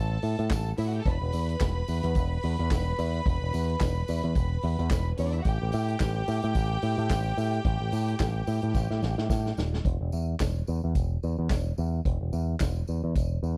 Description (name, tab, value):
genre	disco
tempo	109 BPM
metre	4/4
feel	swing 56% on 16ths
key	unclear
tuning	A4 = 440 Hz
part	clear studio violin section	second line	0.0-9.5 s	C#4 to B5	-37 LUFS	equal	none
part	picked electric bass with an envelope filter	bass	0.0-13.6 s	D#1 to A2	-30 LUFS	equal	none
part	vintage drum kit	drums	0.2-13.3 s	handclaps, hi-hat, kick drum, snare drum	-32 LUFS	equal	none
part	tambourine	percussion	0.2-13.6 s	none	-53 LUFS	equal	none
room	studio reverb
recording	dry, close 1970s-style studio recording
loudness	-28 LUFS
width	mono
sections	0.0-9.8 A section; 9.8-13.6 B section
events	drum fill 8.7-9.8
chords	0.0 A5; 1.1 E5; 5.5 Gsus2; 9.8 N.C.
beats	0.50 | 1.05 1.60 2.15 2.70 | 3.25 3.80 4.35 4.90 | 5.45 6.00 6.55 7.10 | 7.65 8.20 8.74 9.29 | 9.85 10.40 10.95 11.50 | 12.05 12.61 13.16